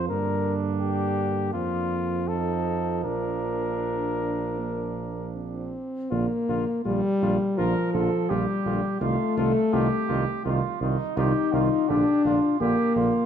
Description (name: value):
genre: classical, brass quintet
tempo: 77-85 BPM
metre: 4/4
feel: rubato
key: Bb major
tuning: A4 = 440 Hz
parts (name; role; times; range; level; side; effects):
- warm cornet; melody; 0.0-13.1 s; F4 to Bb4; -32 LUFS; left 7 dB; none
- warm flugelhorn; second line; 0.0-13.3 s; D4 to Bb4; -32 LUFS; right 7 dB; none
- clear trombone; accompaniment; 0.0-13.1 s; D3 to F3; -34 LUFS; right 5 dB; none
- dark French horn; accompaniment; 0.0-13.3 s; F3 to Eb4; -26 LUFS; left 3 dB; none
- mellow tuba; bass; 0.0-13.1 s; Bb1 to G2; -29 LUFS; right 4 dB; none
room: moderate recital hall reverb, RT60 1.8 s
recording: dark, warm production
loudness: -23 LUFS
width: side -8 dB against mid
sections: 0.0-6.1 A section; 6.1-13.3 A section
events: none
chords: 0.1 Gm; 1.5 Bb/F; 2.3 F7; 3.0 Bb; 9.0 F7/C; 11.9 Bb